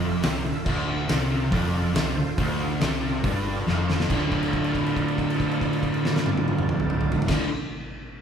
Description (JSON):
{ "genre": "blues rock power trio and southern rock", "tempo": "140 BPM", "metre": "4/4", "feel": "straight", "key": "D minor", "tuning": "A4 = 440 Hz", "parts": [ { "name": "overdriven tonewheel organ", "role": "sustained chords", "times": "0.0-7.5 s", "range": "F4 to A5", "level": "-34 LUFS", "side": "right 2 dB", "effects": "slow rotary speaker, chorus vibrato" }, { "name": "overdriven electric guitar", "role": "riff", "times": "0.0-7.5 s", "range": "D2 to D3", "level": "-25 LUFS", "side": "equal", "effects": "none" }, { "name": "vintage muted fingered electric bass", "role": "bass", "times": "0.0-7.5 s", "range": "D1 to C2", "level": "-32 LUFS", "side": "equal", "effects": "none" }, { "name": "oversized low-tuned drum kit", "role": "drums", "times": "0.2-7.4 s", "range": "crash cymbal, hi-hat, kick drum, snare drum, toms", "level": "-27 LUFS", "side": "equal", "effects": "none" } ], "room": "wet large studio reverb, RT60 1.4 s", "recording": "band playing live in one room", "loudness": "-22 LUFS", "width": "side -8 dB against mid", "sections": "0.0-4.1 A section; 4.1-7.5 B section", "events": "tonewheel organ fill 3.2-4.1; drum fill 3.7-4.1; held note 4.1-7.3", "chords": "0.0 Dm" }